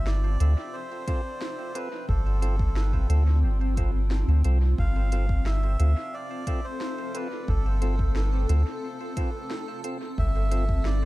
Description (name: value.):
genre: ambient dub.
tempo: 89 BPM.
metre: 4/4.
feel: straight.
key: unclear.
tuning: A4 = 440 Hz.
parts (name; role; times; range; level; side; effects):
melodica; melody; 0.0-11.1 s; A4 to F5; -36 LUFS; right 1 dB; dub echo.
granular cloud pad; sustained chords; 0.0-11.1 s; C4 to A5; -36 LUFS; left 2 dB; built-in reverb.
soft dub sub bass; bass; 0.0-11.1 s; G1 to D2; -22 LUFS; equal; none.
organic electronic drum kit; drums; 0.1-11.0 s; hi-hat, snare drum; -40 LUFS; right 1 dB; dub echo.
percussive tonewheel organ; stabs; 0.4-10.7 s; C4 to A4; -39 LUFS; right 1 dB; overdrive, stopped rotary speaker, dub echo.
electronic kick drum; drums; 1.1-10.8 s; none; -28 LUFS; equal; none.
room: digital ambience.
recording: echo-heavy mix.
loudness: -23 LUFS.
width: side -18 dB against mid.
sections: 0.0-11.1 A section.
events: none.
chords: 0.0 G7sus4.